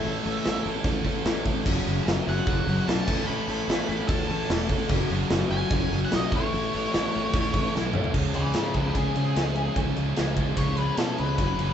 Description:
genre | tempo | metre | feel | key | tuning
classic rock | 148 BPM | 4/4 | straight | unclear | A4 = 440 Hz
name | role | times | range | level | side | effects
octave-fuzz lead guitar | melody | 0.0-11.7 s | G#4 to B5 | -32 LUFS | left 2 dB | distortion
biting overdriven guitar | riff | 0.0-11.7 s | F#2 to A4 | -32 LUFS | right 8 dB | none
overdriven semi-hollow guitar | riff | 0.0-11.7 s | F#2 to C#4 | -30 LUFS | left 5 dB | none
big rock drum kit | drums | 0.0-11.7 s | crash cymbal, hi-hat, kick drum, ride cymbal, snare drum, toms | -27 LUFS | right 1 dB | none
fuzz fingered electric bass | bass | 0.1-11.7 s | E1 to C#3 | -30 LUFS | equal | overdrive
room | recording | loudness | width
moderate stone room reverb, RT60 0.9 s | band playing live in one room, nothing above 8.0 kHz | -23 LUFS | side -9 dB against mid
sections
0.0-8.1 A section; 8.1-11.7 B section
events
drum fill 7.7-8.1; lead electric guitar solo 8.1-11.7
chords
0.0 A; 1.7 F#; 3.1 A; 4.9 F#; 6.3 A; 8.1 C#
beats
| 0.04 0.44 0.85 1.26 | 1.66 2.07 2.47 2.88 | 3.28 3.69 4.09 4.50 | 4.90 5.31 5.71 6.12 | 6.52 6.93 7.33 7.74 | 8.14 8.55 8.96 9.36 | 9.77 10.18 10.58 10.99 | 11.39

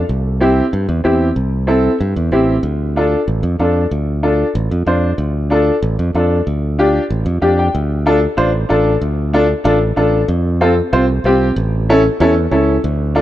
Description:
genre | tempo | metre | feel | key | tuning
latin, cumbia | 188 BPM | 4/4 | straight | D minor | A4 = 439 Hz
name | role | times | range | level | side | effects
clear upright piano | accompaniment | 0.0-13.2 s | C4 to G5 | -15 LUFS | equal | none
modern bright fingered electric bass | bass | 0.0-13.2 s | A1 to G2 | -17 LUFS | equal | none
room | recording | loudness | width
light reverb | none | -13 LUFS | side -13 dB against mid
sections
0.0-7.7 A section; 7.7-13.2 B section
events
upright piano fill 7.3-7.7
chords
0.1 C; 2.6 Dm; 10.3 F5; 11.6 A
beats
| 0.09 0.41 0.73 1.05 | 1.37 1.69 2.01 2.33 | 2.64 2.96 3.28 3.60 | 3.92 4.24 4.56 4.88 | 5.20 5.52 5.83 6.15 | 6.47 6.79 7.11 7.43 | 7.75 8.07 8.39 8.71 | 9.02 9.34 9.66 9.98 | 10.30 10.62 10.93 11.25 | 11.57 11.89 12.21 12.52 | 12.84 13.16

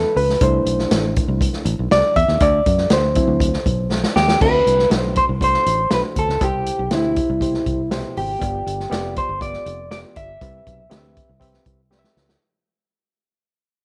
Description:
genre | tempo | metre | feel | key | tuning
uptempo 1960s-style soul | 120 BPM | 4/4 | straight | unclear | A4 = 440 Hz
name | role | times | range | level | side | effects
overdriven reed electric piano | accompaniment | 0.0-12.3 s | G2 to E5 | -24 LUFS | equal | none
fingered electric bass | bass | 0.0-12.3 s | F1 to F#2 | -25 LUFS | equal | none
vintage drum kit | drums | 0.2-12.4 s | crash cymbal, hi-hat, kick drum, snare drum | -24 LUFS | equal | none
electric guitar through a small old amp | melody | 4.2-11.9 s | E4 to E5 | -22 LUFS | equal | none
room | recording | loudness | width
light reverb, studio reverb | none | -18 LUFS | mono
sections
0.0-4.4 A section; 4.4-12.4 B section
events
reed electric piano solo 0.0-4.4; drum fill 3.9-4.4, 11.9-12.4; fade-out 4.4-12.4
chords
0.4 C6; 2.4 D7; 6.4 Cmaj7; 8.4 G7; 10.4 Cmaj7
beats
| 0.41 0.91 1.41 1.91 | 2.41 2.91 3.41 3.91 | 4.41 4.91 5.41 5.91 | 6.41 6.91 7.41 7.91 | 8.41 8.91 9.41 9.91 | 10.41 10.91 11.41 11.91

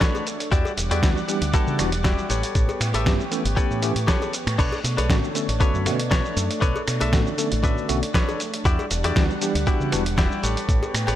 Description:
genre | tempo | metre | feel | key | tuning
nu-disco, nu disco | 118 BPM | 4/4 | swing 53% on 16ths | B minor | A4 = 444 Hz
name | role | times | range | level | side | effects
lush unison pad | sustained chords | 0.0-11.2 s | G3 to F#5 | -30 LUFS | equal | chorus, sidechain pumping
direct-recorded clean electric guitar | riff | 0.0-11.2 s | D4 to E5 | -28 LUFS | left 3 dB | wide subtle chorus, digital delay
dusty soul sampler-style drum kit | drums | 0.0-11.2 s | crash cymbal, finger snaps, hi-hat, shaker, snare drum | -28 LUFS | right 1 dB | none
electronic kick drum | drums | 0.0-10.8 s | none | -21 LUFS | equal | none
cowbell | percussion | 0.1-11.2 s | none | -34 LUFS | left 2 dB | none
fingered electric bass with an envelope filter | bass | 0.5-11.2 s | E1 to C#3 | -25 LUFS | equal | none
tine electric piano | accompaniment | 1.0-10.0 s | D3 to A4 | -28 LUFS | equal | overdrive, fast stereo tremolo, sidechain pumping, digital delay
room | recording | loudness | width
light reverb | none | -20 LUFS | side -12 dB against mid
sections
0.0-11.2 A section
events
none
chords
0.0 Bm9; 0.5 Em9; 2.3 A9; 4.6 Bm9; 8.7 Em9; 10.4 A9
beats
0.01 | 0.52 1.03 1.54 2.05 | 2.56 3.06 3.57 4.08 | 4.59 5.10 5.61 6.11 | 6.62 7.13 7.64 8.15 | 8.66 9.16 9.67 10.18 | 10.69

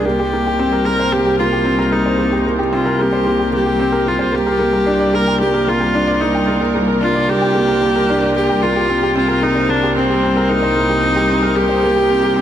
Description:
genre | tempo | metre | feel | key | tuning
electronica | 112 BPM | 4/4 | straight | C minor | A4 = 441 Hz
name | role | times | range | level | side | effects
bright viola | melody | 0.0-12.4 s | C4 to Bb4 | -17 LUFS | equal | ping-pong delay
warm studio string section | sustained chords | 0.0-12.4 s | G3 to Bb4 | -25 LUFS | right 1 dB | none
felt-muted upright piano | riff | 0.0-12.4 s | Bb3 to G5 | -17 LUFS | equal | ping-pong delay
warm chamber cello section | bass | 0.1-12.4 s | C2 | -23 LUFS | equal | none
room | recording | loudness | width
moderate huge ambient reverb, RT60 4.7 s | none | -13 LUFS | side -10 dB against mid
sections
0.0-12.4 A section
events
none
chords
0.0 C7(no3); 4.3 Gm/C; 8.6 Cm7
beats
| 0.05 0.58 1.12 1.65 | 2.19 2.72 3.26 3.80 | 4.33 4.87 5.40 5.94 | 6.47 7.01 7.55 8.08 | 8.62 9.15 9.69 10.22 | 10.76 11.30 11.83 12.37

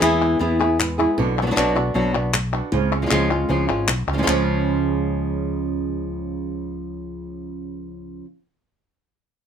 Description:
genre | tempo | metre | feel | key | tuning
flamenco | 156 BPM | 4/4 | straight | unclear | A4 = 438 Hz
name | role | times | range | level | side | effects
flamenco guitar | melody | 0.0-8.3 s | B2 to G#4 | -22 LUFS | left 1 dB | none
flamenco guitar | stabs | 0.0-8.3 s | B2 to F#4 | -27 LUFS | right 8 dB | none
mellow fretless electric bass | bass | 0.0-8.2 s | G#1 to E2 | -26 LUFS | equal | none
palmas hand claps | percussion | 0.0-4.4 s | none | -24 LUFS | left 5 dB | none
room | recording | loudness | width
moderate studio ambience, RT60 0.5 s | minimal, uncompressed stereo recording | -19 LUFS | side -8 dB against mid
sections
0.0-4.3 A section; 4.3-7.3 B section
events
none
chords
0.0 E; 1.2 Bm; 2.7 C#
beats
0.01 0.40 0.79 | 1.18 1.56 1.95 2.34 | 2.73 3.11 3.50 3.88 | 4.27 4.65 5.04 5.42 | 5.81 6.20 6.58 6.96

